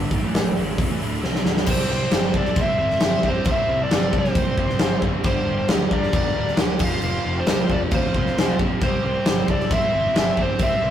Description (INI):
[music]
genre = hard rock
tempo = 134 BPM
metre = 4/4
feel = straight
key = unclear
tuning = A4 = 440 Hz
[part]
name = overdriven tonewheel organ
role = sustained chords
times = 0.0-10.9 s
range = F3 to A5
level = -38 LUFS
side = equal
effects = none
[part]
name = cranked stack guitar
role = riff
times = 0.0-10.9 s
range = D2 to C4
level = -30 LUFS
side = right 4 dB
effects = overdrive
[part]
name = raw garage guitar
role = riff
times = 0.0-10.9 s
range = D2 to C5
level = -33 LUFS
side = left 1 dB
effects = none
[part]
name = scooped high-gain guitar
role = riff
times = 0.0-10.9 s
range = D2 to C4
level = -33 LUFS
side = left 4 dB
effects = distortion
[part]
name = modern bright picked electric bass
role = bass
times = 0.0-10.9 s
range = D1 to G2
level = -29 LUFS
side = equal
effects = none
[part]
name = big rock drum kit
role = drums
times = 0.1-10.7 s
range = crash cymbal, hi-hat, kick drum, snare drum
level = -21 LUFS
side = equal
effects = none
[part]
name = nasal lead guitar with a parked wah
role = melody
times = 1.7-10.9 s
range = C5 to F5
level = -24 LUFS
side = left 1 dB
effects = overdrive
[part]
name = octave-fuzz lead guitar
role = second line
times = 1.7-10.9 s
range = F4 to C5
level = -35 LUFS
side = equal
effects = distortion
[sound]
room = moderate studio reverb, RT60 0.6 s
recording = rough rehearsal-room recording, warm saturation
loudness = -18 LUFS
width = side -10 dB against mid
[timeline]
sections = 0.0-1.7 A section; 1.7-10.9 B section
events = drum fill 1.2-1.7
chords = 0.0 Dm; 1.7 C; 5.3 Gm; 6.8 F; 8.8 C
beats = 0.34 0.78 1.23 | 1.68 2.12 2.57 3.02 | 3.46 3.91 4.36 4.81 | 5.25 5.70 6.15 6.59 | 7.04 7.49 7.93 8.38 | 8.82 9.27 9.72 10.16 | 10.61